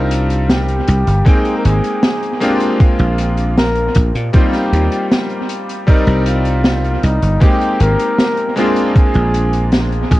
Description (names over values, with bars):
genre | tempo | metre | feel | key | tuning
vaporwave | 78 BPM | 4/4 | straight | unclear | A4 = 440 Hz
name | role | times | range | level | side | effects
breathy flugelhorn | melody | 0.0-10.2 s | Eb4 to Bb4 | -20 LUFS | equal | tape echo
bright electric grand piano | accompaniment | 0.0-10.2 s | G3 to G5 | -19 LUFS | left 1 dB | analog chorus, analog delay
dry thumbed slap bass | bass | 0.0-10.2 s | G1 to Bb2 | -14 LUFS | equal | none
open jazz drum kit | drums | 0.1-10.2 s | hi-hat, snare drum | -18 LUFS | equal | analog delay
electronic kick drum | drums | 1.3-10.2 s | none | -11 LUFS | equal | overdrive
room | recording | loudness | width
light reverb | echo-heavy mix, cassette tape, nothing above 10.3 kHz | -12 LUFS | side -17 dB against mid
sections
0.0-10.2 A section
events
none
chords
0.0 Cm9; 1.3 Abmaj7; 2.4 Bb7; 4.3 Eb6; 5.9 Cm9; 7.4 Abmaj7; 8.6 Bb7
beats
0.50 1.27 2.04 | 2.81 3.57 4.34 5.11 | 5.88 6.65 7.42 8.19 | 8.96 9.73